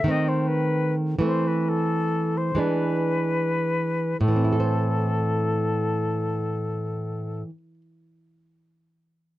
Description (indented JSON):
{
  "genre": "romantic duo for flute and classical guitar",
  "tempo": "34-54 BPM (dotted quarters)",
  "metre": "6/8",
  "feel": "rubato",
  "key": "A minor",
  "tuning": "A4 = 438 Hz",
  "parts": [
    { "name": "silver concert flute", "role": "melody", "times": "0.0-7.4 s", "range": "A4 to E5", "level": "-27 LUFS", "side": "left 3 dB", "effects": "none" },
    { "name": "nylon-string guitar", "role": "accompaniment", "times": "0.0-7.8 s", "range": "A2 to C5", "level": "-23 LUFS", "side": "right 1 dB", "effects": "none" }
  ],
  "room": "moderate booth ambience, RT60 0.2 s",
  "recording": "dark, warm production",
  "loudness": "-22 LUFS",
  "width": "side -15 dB against mid",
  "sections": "0.0-4.2 A section; 4.2-9.4 B section",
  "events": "slowing down 0.0-4.2",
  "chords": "0.1 B7b9/D#; 1.2 Am/E; 2.6 E7; 4.2 Am",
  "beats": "0.10 | 1.25 2.60 | 4.21 5.75 | 7.29"
}